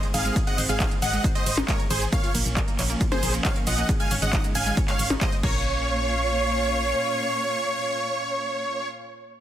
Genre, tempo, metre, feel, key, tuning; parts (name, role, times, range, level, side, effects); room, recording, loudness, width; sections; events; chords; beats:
uplifting trance; 136 BPM; 4/4; straight; Bb minor; A4 = 440 Hz
big supersaw lead; melody; 0.0-8.9 s; Ab4 to Ab5; -27 LUFS; right 1 dB; sidechain pumping, tape echo
plucky unison lead; second line; 0.0-8.9 s; C5 to Ab5; -33 LUFS; right 1 dB; phaser, sidechain pumping, dub echo
dark studio string section; sustained chords; 0.0-8.9 s; Bb2 to F5; -33 LUFS; equal; sidechain pumping
analog pluck; arpeggios; 0.0-5.8 s; Ab3 to Db5; -34 LUFS; right 2 dB; chorus, sidechain pumping, dub echo
techno drum kit; drums; 0.0-5.5 s; crash cymbal, handclaps, hi-hat, percussion blips, ride cymbal, shaker; -29 LUFS; equal; sidechain pumping on hats, sidechain pumping on perc, sidechain pumping on cymbals
solid FM bass; bass; 0.1-6.9 s; Ab1 to Bb1; -28 LUFS; equal; tube saturation, sidechain pumping
electronic kick drum; drums; 0.4-5.5 s; -25 LUFS; equal
light reverb; dense, heavily limited modern master; -22 LUFS; side -11 dB against mid
0.0-5.7 A section; 5.7-9.2 B section
drop 0.0-5.7
0.0 Ab; 2.1 Bbm; 3.9 Absus4; 5.4 Bbm
| 0.36 0.80 1.24 1.68 | 2.12 2.57 3.01 3.45 | 3.89 4.33 4.77 5.21 | 5.66 6.10 6.54 6.98 | 7.42 7.86 8.30 8.74